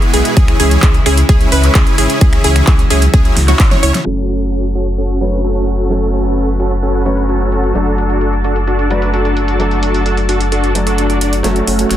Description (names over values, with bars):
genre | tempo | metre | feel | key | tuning
EDM, festival progressive house | 130 BPM | 4/4 | straight | F# minor | A4 = 437 Hz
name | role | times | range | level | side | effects
lush unison pad | sustained chords | 0.0-12.0 s | B2 to A5 | -23 LUFS | left 1 dB | chorus, sidechain pumping
wide unison pluck | arpeggios | 0.0-4.0 s | F#4 to C#5 | -20 LUFS | right 1 dB | sidechain pumping, digital delay
big supersaw lead | riff | 0.0-12.0 s | A3 to D5 | -17 LUFS | right 1 dB | sidechain pumping, low-pass filter, digital delay
big-room dance drum kit | drums | 0.0-12.0 s | crash cymbal, finger snaps, handclaps, hi-hat, snare drum | -20 LUFS | right 1 dB | overdrive, low-pass filter on hats, low-pass filter on snare, low-pass filter on cymbals
saturated sub bass | bass | 0.1-12.0 s | F#1 to C#2 | -15 LUFS | equal | sidechain pumping
electronic kick drum | drums | 0.4-3.7 s | none | -10 LUFS | equal | overdrive
felt-muted upright piano | accompaniment | 4.0-12.0 s | F#3 to D5 | -20 LUFS | left 1 dB | sidechain pumping, digital delay
riser | sound effects | 11.8-12.0 s | none | -31 LUFS | right 2 dB | none
room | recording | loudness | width
digital ambience | dense, heavily limited modern master, low-pass filter | -11 LUFS | side -12 dB against mid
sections
0.0-4.1 A section; 4.1-11.4 B section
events
drop 0.0-4.1; drum fill 3.4-4.1, 11.4-12.0; filter sweep on drum 4.1-11.4; filter sweep 4.1-11.4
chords
0.4 C#m; 4.1 F#m; 7.8 D/F#; 11.4 F#m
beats
| 0.37 0.83 1.29 1.75 | 2.21 2.67 3.14 3.60 | 4.06 4.52 4.98 5.44 | 5.91 6.37 6.83 7.29 | 7.75 8.21 8.68 9.14 | 9.60 10.06 10.52 10.98 | 11.44 11.90